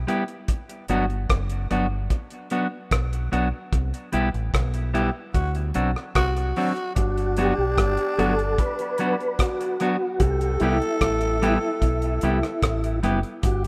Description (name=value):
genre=roots reggae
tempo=74 BPM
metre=4/4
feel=straight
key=G major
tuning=A4 = 440 Hz
part: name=deep dub fingered electric bass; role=bass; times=0.0-13.7 s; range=F#1 to D2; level=-28 LUFS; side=equal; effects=none
part: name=clean electric guitar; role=accompaniment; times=0.1-13.2 s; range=F#3 to G4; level=-29 LUFS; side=equal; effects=tape echo
part: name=cloth-damped thuddy drum kit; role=drums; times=0.1-13.7 s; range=hi-hat, kick drum, rim click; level=-27 LUFS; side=equal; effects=analog delay
part: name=growling tenor saxophone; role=second line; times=4.9-13.7 s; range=D4 to A4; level=-31 LUFS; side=equal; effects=tape echo
part: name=mellow tonewheel organ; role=melody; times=7.0-13.6 s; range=E4 to B4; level=-28 LUFS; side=equal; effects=chorus vibrato, fast rotary speaker, tape echo
room=light reverb, small room ambience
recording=rough home demo mix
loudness=-24 LUFS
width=mono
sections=0.0-7.0 A section; 7.0-13.7 B section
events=band accent 3.7-7.0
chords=0.5 Gmaj7; 3.7 Cmaj7 (rootless); 5.3 D7; 7.0 Gmaj7; 10.2 Cmaj7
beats=| 0.48 1.29 2.10 2.91 | 3.72 4.53 5.34 6.15 | 6.96 7.77 8.58 9.39 | 10.20 11.01 11.82 12.63 | 13.44